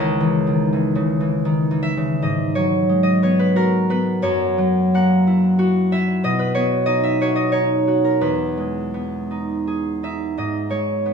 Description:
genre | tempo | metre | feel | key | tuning
classical, solo harp piece | 77-94 BPM | 3/4 | rubato | G# minor | A4 = 441 Hz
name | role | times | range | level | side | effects
concert harp | solo | 0.0-11.1 s | C#2 to A#5 | -17 LUFS | equal | none
room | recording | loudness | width
moderate stone room reverb, RT60 1.3 s | studio reverb | -17 LUFS | side -6 dB against mid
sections
0.0-2.2 A section; 2.2-11.1 B section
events
none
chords
0.0 C#m6; 2.2 G#m11; 4.2 F#9; 6.2 Badd9; 8.2 Emaj7; 10.4 G#madd11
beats
0.71 1.46 | 2.21 2.89 3.56 | 4.22 4.94 5.59 | 6.23 6.88 7.54 | 8.23 8.95 9.67 | 10.36 11.04

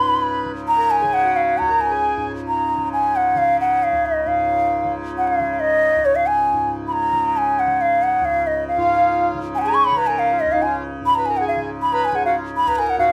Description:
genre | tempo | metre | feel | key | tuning
indian classical, Hindustani | 136 BPM | 5/4 | straight | Db raga khamaj | A4 = 440 Hz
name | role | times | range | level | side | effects
hollow bansuri | melody | 0.0-13.1 s | Db5 to Db6 | -19 LUFS | equal | none
hand-pumped harmonium | second line | 0.0-2.3, 8.8-13.1 s | Eb4 to Db5 | -28 LUFS | equal | none
tanpura | drone | 0.0-13.1 s | Db2 to Db3 | -30 LUFS | equal | none
room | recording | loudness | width
moderate studio reverb, RT60 0.5 s | none | -19 LUFS | mono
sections
0.0-4.3 A section; 4.3-13.0 B section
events
speeding up 0.0-13.1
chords
none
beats
0.21 0.67 1.12 1.57 | 2.02 2.47 2.92 3.37 3.81 | 4.26 4.71 5.15 5.59 6.04 | 6.48 6.92 7.36 7.80 8.23 | 8.67 9.11 9.54 9.98 10.41 | 10.85 11.28 11.71 12.14 12.57 | 12.99

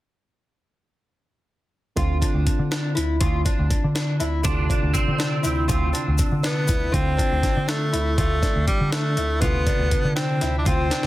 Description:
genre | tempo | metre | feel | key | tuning
progressive instrumental, band music in an uneven meter | 241 BPM (eighths) | 5/8 | straight | D dorian | A4 = 439 Hz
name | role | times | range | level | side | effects
barky tine electric piano | accompaniment | 2.0-11.1 s | C3 to F4 | -31 LUFS | right 4 dB | overdrive, plate reverb
fingerpicked twelve-string acoustic guitar | arpeggios | 2.0-11.1 s | D4 to F4 | -29 LUFS | left 2 dB | plate reverb, digital delay
picked electric bass | bass | 2.0-11.1 s | D2 to D3 | -23 LUFS | equal | none
breakbeat sampler-style drum kit | drums | 2.0-11.1 s | hi-hat, kick drum, snare drum | -24 LUFS | equal | none
clean electric guitar | second line | 4.4-6.6 s | C4 to D4 | -28 LUFS | right 3 dB | ensemble chorus, plate reverb
tube shaker | percussion | 4.4-6.9 s | none | -34 LUFS | left 8 dB | none
bright tenor saxophone | melody | 6.5-11.1 s | G3 to D4 | -25 LUFS | equal | plate reverb
room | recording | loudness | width
little or no reverb | dense, heavily limited modern master | -19 LUFS | side -16 dB against mid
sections
2.0-6.9 A section; 6.9-11.1 B section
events
drum fill 10.9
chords
2.0 Dm7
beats
| 1.96 2.21 2.46 2.71 2.96 | 3.21 3.46 3.70 3.95 4.20 | 4.45 4.70 4.95 5.19 5.44 | 5.69 5.94 6.19 6.44 6.68 | 6.93 7.18 7.43 7.68 7.93 | 8.18 8.43 8.68 8.92 9.17 | 9.42 9.67 9.92 10.17 10.42 | 10.66 10.91

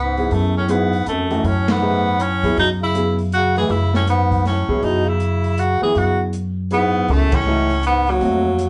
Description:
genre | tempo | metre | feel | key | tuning
modal jazz | 160 BPM | 3/4 | swing 64% on 8ths | F# dorian | A4 = 440 Hz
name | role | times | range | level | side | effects
clear tenor saxophone | melody | 0.0-8.7 s | F#3 to G#4 | -23 LUFS | equal | none
clear bass clarinet | second line | 0.0-8.7 s | D#2 to E3 | -27 LUFS | equal | none
upright bass | bass | 0.0-8.7 s | Db2 to F#2 | -23 LUFS | equal | none
warm baby grand piano | accompaniment | 0.2-8.4 s | E3 to B4 | -25 LUFS | equal | none
open jazz drum kit | drums | 0.2-8.7 s | hi-hat, kick drum, ride cymbal, snare drum | -29 LUFS | equal | none
room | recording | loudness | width
wet small room reverb, RT60 0.6 s | band playing live in one room, nothing above 10.6 kHz | -18 LUFS | mono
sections
0.3-8.7 A section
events
band accent 1.6, 7.3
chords
0.3 F#m11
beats
| 0.31 0.69 1.06 | 1.44 1.82 2.19 | 2.57 2.95 3.32 | 3.70 4.07 4.45 | 4.83 5.20 5.58 | 5.95 6.33 6.71 | 7.08 7.46 7.83 | 8.21 8.59

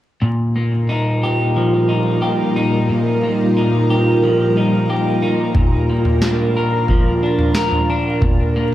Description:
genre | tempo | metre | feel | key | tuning
dream pop | 90 BPM | 4/4 | straight | unclear | A4 = 439 Hz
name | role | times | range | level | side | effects
ethereal airy pad | sustained chords | 1.1-8.7 s | Bb2 to Bb4 | -18 LUFS | right 1 dB | ensemble chorus, built-in reverb, phaser
electric guitar at the edge of break-up | arpeggios | 0.2-8.7 s | Bb2 to Bb4 | -17 LUFS | left 1 dB | wide subtle chorus, analog delay
booming analog drum machine | drums | 5.5-8.7 s | kick drum, snare drum, toms | -18 LUFS | equal | none
room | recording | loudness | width
moderate studio reverb, RT60 0.6 s | vinyl crackle, lossy compression artefacts | -14 LUFS | side -13 dB against mid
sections
0.2-8.7 A section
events
none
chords
0.2 Ebadd9/Bb; 5.6 Bb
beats
| 0.22 0.89 1.55 2.22 | 2.89 3.56 4.22 4.89 | 5.55 6.22 6.89 7.55 | 8.22

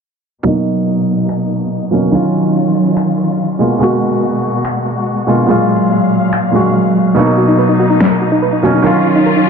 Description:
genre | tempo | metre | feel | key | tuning
future bass | 143 BPM | 4/4 | half-time | unclear | A4 = 439 Hz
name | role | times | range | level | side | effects
felt-muted upright piano | accompaniment | 0.4-9.5 s | A#2 to F#4 | -12 LUFS | right 1 dB | ping-pong delay
clear studio string section | sustained chords | 0.5-9.5 s | A#2 to E#5 | -18 LUFS | left 3 dB | low-pass filter
electronic finger snaps and snare drum | drums | 1.3-8.1 s | none | -16 LUFS | left 3 dB | overdrive
soft round pluck | arpeggios | 7.2-9.5 s | D#4 to B4 | -15 LUFS | equal | chorus, ping-pong delay
room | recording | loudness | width
light reverb | low-pass filter | -11 LUFS | side -6 dB against mid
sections
0.5-9.5 A section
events
filter sweep on string section 0.5-9.5; filter sweep 0.5-9.5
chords
0.5 Bmaj7; 2.1 D#m9; 3.6 G#m9; 5.5 F#maj9; 7.2 Bmaj7; 8.8 D#m9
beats
| 0.45 0.87 1.29 1.71 | 2.13 2.55 2.97 3.39 | 3.81 4.23 4.65 5.07 | 5.49 5.91 6.33 6.75 | 7.17 7.58 8.00 8.42 | 8.84 9.26

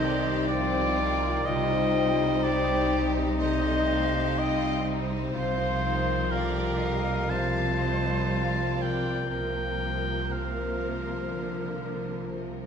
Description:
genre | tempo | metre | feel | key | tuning
cinematic, emotional film score for orchestra | 61 BPM | 4/4 | rubato | unclear | A4 = 439 Hz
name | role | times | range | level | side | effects
warm symphonic violin section | melody | 0.0-12.7 s | Eb4 to Bb4 | -37 LUFS | left 4 dB | none
clear cor anglais | second line | 0.0-12.3 s | Bb4 to A5 | -31 LUFS | equal | none
silver concert flute | second line | 0.0-12.3 s | Bb4 to G5 | -35 LUFS | left 2 dB | none
warm symphonic violin section | second line | 0.0-12.7 s | Bb4 to F5 | -35 LUFS | left 2 dB | none
warm symphonic viola section | accompaniment | 0.0-12.7 s | D3 to F4 | -35 LUFS | equal | none
mellow French horn section | sustained chords | 0.0-12.7 s | Eb3 to Eb4 | -33 LUFS | left 3 dB | none
concert harp | arpeggios | 0.0-12.7 s | C3 to G4 | -35 LUFS | right 2 dB | none
rich symphonic cello section | bass | 0.0-12.7 s | C3 to D3 | -35 LUFS | right 2 dB | none
rich symphonic double bass section | bass | 0.0-12.7 s | C2 | -34 LUFS | right 2 dB | none
room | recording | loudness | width
wet recital hall reverb, RT60 1.8 s | recorded in a church or concert hall | -24 LUFS | side -7 dB against mid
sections
0.0-12.7 A section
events
none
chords
0.0 Cmadd9; 5.4 Fsus4/C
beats
0.50 | 1.47 2.44 3.41 4.38 | 5.35 6.33 7.31 8.30 | 9.31 10.33 11.34 12.35

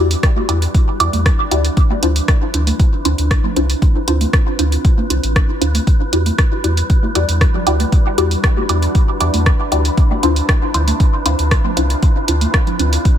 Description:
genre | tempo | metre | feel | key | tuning
dub techno | 117 BPM | 4/4 | straight | unclear | A4 = 440 Hz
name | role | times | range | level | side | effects
deep dark ambient pad | sustained chords | 0.0-13.2 s | G3 to G4 | -26 LUFS | equal | chorus, built-in reverb, sidechain pumping
filtered dub chord stab | stabs | 0.0-12.9 s | D4 to D5 | -20 LUFS | left 1 dB | phaser, sidechain pumping, dub echo
soft dub sub bass | bass | 0.0-13.0 s | A1 to E2 | -16 LUFS | equal | sidechain pumping
wind-like tuned noise texture | texture | 0.0-13.2 s | B4 | -28 LUFS | right 1 dB | built-in reverb, sidechain pumping
punchy analog drum machine | drums | 0.1-13.2 s | hi-hat, rim click | -22 LUFS | right 1 dB | dub echo
electronic kick drum | drums | 0.2-13.2 s | none | -13 LUFS | equal | none
congas | percussion | 0.4-12.8 s | none | -27 LUFS | right 3 dB | overdrive, sidechain pumping on perc, dub echo
room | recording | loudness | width
little or no reverb | none | -13 LUFS | side -10 dB against mid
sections
0.0-13.2 A section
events
none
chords
0.0 Em9; 1.8 Dm9; 5.9 Em9; 10.0 Dm9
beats
0.23 0.74 1.26 | 1.77 2.28 2.79 3.31 | 3.82 4.33 4.85 5.36 | 5.87 6.38 6.90 7.41 | 7.92 8.44 8.95 9.46 | 9.97 10.49 11.00 11.51 | 12.03 12.54 13.05

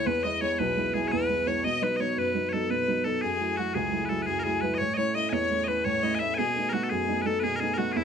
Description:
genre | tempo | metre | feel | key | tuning
celtic folk | 114 BPM (dotted quarters) | 9/8 | straight | unclear | A4 = 440 Hz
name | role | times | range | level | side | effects
loud bright bagpipes | melody | 0.0-8.0 s | E4 to G#5 | -29 LUFS | left 2 dB | none
dark fiddle | second line | 0.0-8.0 s | E4 to E5 | -30 LUFS | left 4 dB | tape echo
dark upright piano | accompaniment | 0.0-8.0 s | B1 to E4 | -29 LUFS | right 4 dB | none
room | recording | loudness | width
moderate studio reverb, RT60 0.6 s | none | -25 LUFS | side -7 dB against mid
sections
0.0-8.0 A section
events
none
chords
0.1 E; 1.6 B; 3.2 F#m7; 4.8 A; 6.4 B7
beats
| 0.07 0.60 1.12 | 1.65 2.18 2.70 | 3.23 3.75 4.28 | 4.81 5.33 5.86 | 6.38 6.91 7.44 | 7.96

